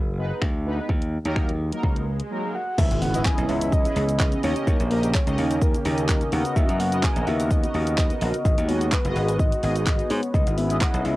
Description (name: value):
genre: dance-pop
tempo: 127 BPM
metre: 4/4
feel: straight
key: G# minor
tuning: A4 = 440 Hz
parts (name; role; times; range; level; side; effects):
- slap bass; bass; 0.0-11.2 s; F#1 to G#2; -25 LUFS; equal; sidechain pumping
- mellow synth brass; accompaniment; 0.2-11.1 s; F#3 to D#5; -30 LUFS; right 1 dB; chorus, phaser, sidechain pumping, cassette tape
- pop drum kit; drums; 0.4-11.2 s; crash cymbal, finger snaps, handclaps, hi-hat, kick drum, shaker; -23 LUFS; equal; none
- swell and impact; sound effects; 1.7-4.7 s; none; -33 LUFS; equal; none
- soft octave-layered synth lead; melody; 2.5-11.2 s; A#4 to G#5; -29 LUFS; equal; chorus
- warm analog pad; sustained chords; 2.8-11.2 s; C#3 to A#4; -30 LUFS; equal; chorus, sidechain pumping, cassette tape
- wide unison pluck; arpeggios; 2.8-11.2 s; D#3 to B5; -36 LUFS; left 6 dB; none
- group handclap; percussion; 3.3-10.9 s; none; -36 LUFS; right 8 dB; none
room: light reverb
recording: home recording on cassette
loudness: -20 LUFS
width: side -18 dB against mid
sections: 0.0-2.8 A section; 2.8-11.2 B section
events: swell 1.7-2.8; break 2.3-2.8; impact 2.8-4.7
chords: 0.0 G#m; 0.9 D#m; 2.8 C#m9; 4.4 D#7; 6.3 Bmaj7; 8.5 G#m7; 10.3 C#m9